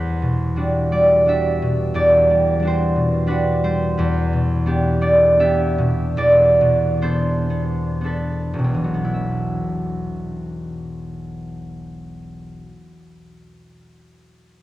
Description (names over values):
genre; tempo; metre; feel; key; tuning
classical, solo harp piece; 51-91 BPM; 3/4; rubato; E minor; A4 = 438 Hz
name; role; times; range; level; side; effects
concert harp; solo; 0.0-13.2 s; E1 to E5; -17 LUFS; equal; none
room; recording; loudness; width
wet cathedral reverb, RT60 4.7 s; worn, warbling old tape, cassette tape, warbly pitch drift; -16 LUFS; side -15 dB against mid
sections
0.0-9.1 A section; 9.1-14.6 B section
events
slowing down 2.9-9.1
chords
0.0 Em9; 4.0 Em7; 6.2 Bm7/E; 9.1 Esus2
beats
0.58 1.27 | 1.95 2.61 3.27 | 3.95 4.66 5.38 | 6.17 7.03 8.02 | 9.14 10.19 11.25 | 12.32